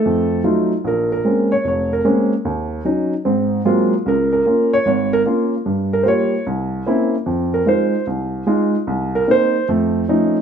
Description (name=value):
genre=solo jazz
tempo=149 BPM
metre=4/4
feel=swing 65% on 8ths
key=Bb minor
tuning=A4 = 438 Hz
part: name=warm upright piano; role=solo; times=0.0-10.4 s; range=F1 to Db5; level=-15 LUFS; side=right 1 dB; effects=none
room=moderate large studio reverb, RT60 1.3 s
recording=dark, warm production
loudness=-15 LUFS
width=side -7 dB against mid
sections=0.8-10.4 A section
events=upright piano solo 0.8-10.4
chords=0.0 F7b9; 0.8 Bbm9; 2.4 Ebm7; 3.2 Ab13; 4.1 Db6; 5.7 Gm7b5; 6.5 C7b9; 7.3 Fm7; 8.9 Cm7; 9.7 F7b13